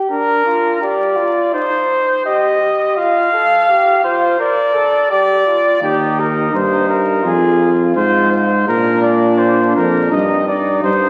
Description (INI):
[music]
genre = classical, imitative canzona for brass ensemble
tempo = 84 BPM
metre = 4/4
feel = straight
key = unclear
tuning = A4 = 435 Hz
[part]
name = mellow flugelhorn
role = second line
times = 0.0-11.1 s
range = D4 to Bb4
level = -22 LUFS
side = equal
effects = none
[part]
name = warm trumpet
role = melody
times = 0.1-11.1 s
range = G4 to F5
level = -17 LUFS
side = equal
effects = none
[part]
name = mellow bass trombone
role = bass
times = 5.8-11.1 s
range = Eb2 to Bb2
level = -18 LUFS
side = equal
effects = none
[sound]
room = wet concert hall reverb, RT60 1.8 s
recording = very old 78 rpm record, vinyl crackle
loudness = -15 LUFS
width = mono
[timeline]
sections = 0.0-11.1 A section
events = none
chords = 0.1 Bb/D; 1.5 Cm/Eb; 3.0 F; 4.4 Bb; 5.8 Eb; 7.2 Fm; 8.7 Bb; 10.1 Eb/G